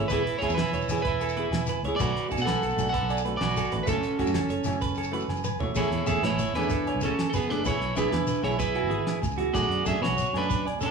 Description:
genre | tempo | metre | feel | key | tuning
highlife guitar band | 127 BPM (dotted quarters) | 12/8 | straight | A major | A4 = 441 Hz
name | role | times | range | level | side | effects
electric guitar at the edge of break-up | melody | 0.0-10.9 s | B3 to F#5 | -29 LUFS | right 2 dB | none
clear trumpet | second line | 0.0-10.9 s | B3 to A4 | -38 LUFS | left 2 dB | none
flamenco guitar | accompaniment | 0.0-10.9 s | E3 to G#4 | -34 LUFS | left 1 dB | none
clean electric guitar | arpeggios | 0.0-10.9 s | F#4 to D5 | -32 LUFS | right 7 dB | none
fingered electric bass | bass | 0.1-10.9 s | E1 to B2 | -31 LUFS | right 1 dB | none
damped 70s drum kit | drums | 0.1-10.9 s | crash cymbal, hi-hat, kick drum, snare drum, toms | -34 LUFS | right 1 dB | none
agogo bells | percussion | 0.1-10.8 s | none | -37 LUFS | equal | none
shekere | percussion | 0.1-10.9 s | none | -37 LUFS | left 3 dB | none
room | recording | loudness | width
moderate large studio reverb, RT60 1.2 s | band playing live in one room, studio ambience | -24 LUFS | side -5 dB against mid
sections
0.0-5.8 A section; 5.8-10.9 B section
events
drum fill 5.3-5.8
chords
0.1 E; 2.0 Bm7; 3.9 F#m7; 5.8 Amaj7; 7.7 E; 9.5 Bm7

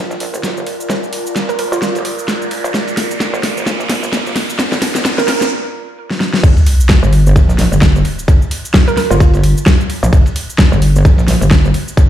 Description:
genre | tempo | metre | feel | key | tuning
bass house | 130 BPM | 4/4 | swing 57% on 16ths | G minor | A4 = 440 Hz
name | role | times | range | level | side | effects
metallic wobble bass | bass | 0.0-12.1 s | G1 to Bb1 | -14 LUFS | equal | chorus, sidechain pumping, high-pass filter
riser and sub drop | sound effects | 0.1-8.3 s | none | -19 LUFS | equal | none
airy breathy pad | texture | 0.0-5.5 s | F4 to D5 | -23 LUFS | right 1 dB | chorus, sidechain pumping
big-room dance drum kit | drums | 0.1-12.1 s | cabasa, crash cymbal, hi-hat, snare drum | -17 LUFS | left 1 dB | overdrive
dusty soul sampler-style drum kit | drums | 0.1-12.1 s | hi-hat, ride cymbal, snare drum | -29 LUFS | right 1 dB | sidechain pumping on cymbals, high-pass filter on cymbals, high-pass filter on snare, sidechain pumping on hats, high-pass filter on hats, high-pass filter on room
hollow square pluck | melody | 1.5-1.9, 5.2-5.4, 8.9-9.3 s | F4 to Bb4 | -20 LUFS | right 6 dB | chorus, ping-pong delay
electronic kick drum | drums | 6.4-12.1 s | none | -9 LUFS | equal | none
room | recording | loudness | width
light reverb, digital ambience | played on a big sound system in a bare room, large studio reverb | -11 LUFS | side -11 dB against mid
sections
0.0-6.4 A section; 6.4-12.1 B section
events
build-up 0.0-6.4; drum fill 0.0-5.5, 6.1-6.4; riser 0.1-5.5; break 5.5-6.4; drop 6.4-12.1; impact 6.4-8.3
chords
0.0 Gm

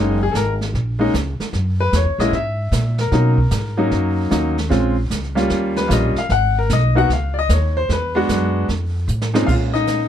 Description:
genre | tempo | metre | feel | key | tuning
jazz piano trio | 151 BPM | 4/4 | swing 66% on 8ths | unclear | A4 = 440 Hz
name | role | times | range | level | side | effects
clear concert grand piano | melody | 0.0-10.1 s | Bb2 to Gb5 | -19 LUFS | left 2 dB | none
upright bass | bass | 0.0-10.1 s | Gb1 to B2 | -19 LUFS | equal | none
jazz brush drum kit | drums | 0.3-10.1 s | brushed snare drum, crash cymbal, hi-hat, kick drum, snare drum | -25 LUFS | right 2 dB | none
room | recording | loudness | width
little or no reverb | dark, warm production | -16 LUFS | side -10 dB against mid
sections
0.0-9.5 A section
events
grand piano solo 0.0-9.5; drum fill 9.1-9.5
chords
0.0 Gb69; 1.5 Gb7; 3.1 Bmaj9; 4.7 Bbm7; 5.5 Eb7; 6.3 Abm7; 7.9 E9; 8.7 F; 9.5 Bbm7

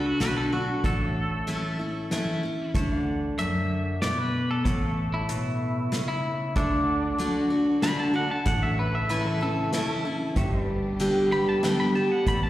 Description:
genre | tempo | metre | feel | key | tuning
honky-tonk and classic country | 94 BPM | 3/4 | straight | D major | A4 = 438 Hz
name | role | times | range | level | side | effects
twangy electric guitar | melody | 0.0-12.5 s | D4 to B5 | -30 LUFS | equal | spring reverb, plate reverb, slapback echo, analog delay
picked steel-string acoustic guitar | accompaniment | 0.0-12.5 s | F#2 to G4 | -26 LUFS | equal | plate reverb, slapback echo
pedal steel guitar | sustained chords | 0.0-12.5 s | E4 to F#5 | -39 LUFS | right 2 dB | wide subtle chorus, plate reverb
fingered electric bass | bass | 0.0-12.5 s | G1 to D2 | -31 LUFS | equal | none
unplugged drum kit | drums | 0.2-12.4 s | hi-hat, kick drum, snare drum | -29 LUFS | equal | none
rich studio string section | sustained chords | 6.6-12.5 s | B2 to A4 | -35 LUFS | right 1 dB | none
room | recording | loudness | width
moderate club reverb, RT60 0.5 s | live gig heard through the venue's PA, recital hall reverb | -23 LUFS | side -14 dB against mid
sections
0.0-12.5 A section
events
clean electric guitar solo 0.0-12.5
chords
0.0 D; 0.8 A; 2.7 D; 4.7 A; 6.6 D; 8.5 A; 10.4 G

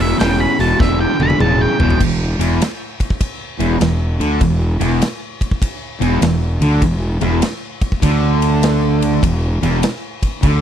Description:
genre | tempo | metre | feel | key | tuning
blues rock power trio and southern rock | 100 BPM | 4/4 | swing 66% on 8ths | unclear | A4 = 440 Hz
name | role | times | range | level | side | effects
octave-fuzz lead guitar | melody | 0.0-2.0 s | E5 to B5 | -20 LUFS | right 2 dB | distortion, tape echo
distorted electric guitar | riff | 0.0-10.6 s | E2 to D3 | -17 LUFS | equal | distortion
fuzz fingered electric bass | bass | 0.0-10.6 s | E1 to D2 | -17 LUFS | equal | overdrive
big rock drum kit | drums | 0.2-10.6 s | crash cymbal, hi-hat, kick drum, ride cymbal, snare drum, toms | -20 LUFS | equal | none
room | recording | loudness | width
little or no reverb | dry, close 1970s-style studio recording, lossy compression artefacts | -14 LUFS | side -9 dB against mid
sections
0.0-2.0 A section; 2.0-10.6 B section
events
lead electric guitar solo 0.0-2.0; drum fill 0.8-2.0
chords
0.0 E5; 2.0 Dsus2/E

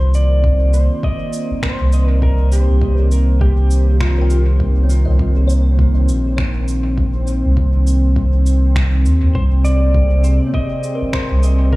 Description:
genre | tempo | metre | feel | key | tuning
ambient dub | 101 BPM | 4/4 | swing 60% on 16ths | C minor | A4 = 444 Hz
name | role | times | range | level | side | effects
clean lap steel guitar | melody | 0.0-4.4, 9.3-11.8 s | F4 to Eb5 | -25 LUFS | left 1 dB | vintage 12-bit sampler grit, tape echo
warm analog pad | sustained chords | 0.0-11.8 s | C3 to C5 | -22 LUFS | right 1 dB | chorus
soft dub sub bass | bass | 0.0-11.8 s | G1 to Eb2 | -13 LUFS | equal | none
electronic cabasa and finger snaps | drums | 0.1-11.6 s | none | -29 LUFS | equal | overdrive, dub echo
electronic kick drum | drums | 0.4-11.8 s | none | -20 LUFS | equal | overdrive
kalimba | arpeggios | 3.0-11.8 s | Bb3 to G5 | -31 LUFS | left 2 dB | tape echo
room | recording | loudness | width
little or no reverb | small room ambience | -13 LUFS | side -20 dB against mid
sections
0.0-11.8 A section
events
none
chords
0.0 Cm7; 9.4 Ab

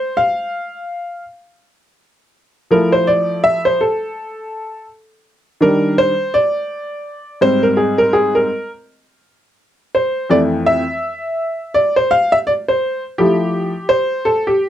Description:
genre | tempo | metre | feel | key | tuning
hip hop | 83 BPM | 4/4 | swing 60% on 16ths | F major | A4 = 440 Hz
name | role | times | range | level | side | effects
clear upright piano | solo | 0.0-14.7 s | F2 to F5 | -14 LUFS | equal | none
room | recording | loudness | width
light reverb | dry, close 1970s-style studio recording | -14 LUFS | side -11 dB against mid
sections
0.0-1.6 A section; 1.6-13.2 B section; 13.2-14.7 C section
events
upright piano solo 0.0-1.6, 1.6-13.2, 13.2-14.7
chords
0.0 N.C.; 1.6 Fmaj7; 4.5 Ebmaj7; 7.4 Abmaj7; 10.3 Fmaj7

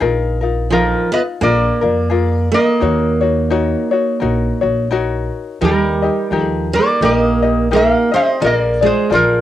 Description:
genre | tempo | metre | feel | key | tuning
Hawaiian | 86 BPM | 4/4 | swing 58% on 8ths | Eb minor, Eb major from 5.6 s | A4 = 445 Hz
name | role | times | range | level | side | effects
tenor ukulele | accompaniment | 0.0-9.4 s | D4 to Eb5 | -19 LUFS | left 6 dB | cassette tape
upright bass | bass | 0.0-9.4 s | Bb1 to F2 | -20 LUFS | equal | none
metal-body resonator slide guitar | melody | 0.7-9.4 s | F4 to F5 | -16 LUFS | equal | cassette tape
picked steel-string acoustic guitar | second line | 0.7-9.4 s | F3 to C4 | -18 LUFS | right 5 dB | cassette tape
room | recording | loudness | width
light reverb | home recording on cassette | -13 LUFS | side -12 dB against mid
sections
0.0-5.6 A section; 5.6-9.4 B section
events
none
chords
0.0 Bb7sus4; 1.4 Bb7; 2.8 Ebm7; 5.6 Eb; 8.4 Bb7

